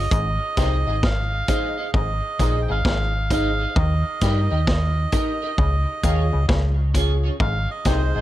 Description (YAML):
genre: roots reggae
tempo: 66 BPM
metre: 4/4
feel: swing 64% on 16ths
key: Ab major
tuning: A4 = 441 Hz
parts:
  - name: melodica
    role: melody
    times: 0.0-8.2 s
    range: C5 to G5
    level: -28 LUFS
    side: right 3 dB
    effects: dub echo
  - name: clean electric guitar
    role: accompaniment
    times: 0.0-8.2 s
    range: Db4 to Eb5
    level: -31 LUFS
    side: right 2 dB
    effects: analog chorus, dub echo
  - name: hollow-body short-scale fingered electric bass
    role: bass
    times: 0.0-8.2 s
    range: Ab1 to G2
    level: -21 LUFS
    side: equal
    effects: none
  - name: auto-wah clav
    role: riff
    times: 0.1-8.2 s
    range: Ab2 to G3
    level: -33 LUFS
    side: left 7 dB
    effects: overdrive
  - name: vintage drum kit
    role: drums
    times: 0.1-8.1 s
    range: hi-hat, kick drum, snare drum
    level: -23 LUFS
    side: equal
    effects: none
  - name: clear upright piano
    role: stabs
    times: 0.6-8.1 s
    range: Eb4 to F5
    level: -31 LUFS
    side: left 1 dB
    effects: none
room: little or no reverb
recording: none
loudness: -19 LUFS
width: side -14 dB against mid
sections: 0.0-8.2 A section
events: none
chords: 0.1 Ab; 3.8 Eb; 5.6 Db; 7.4 Ab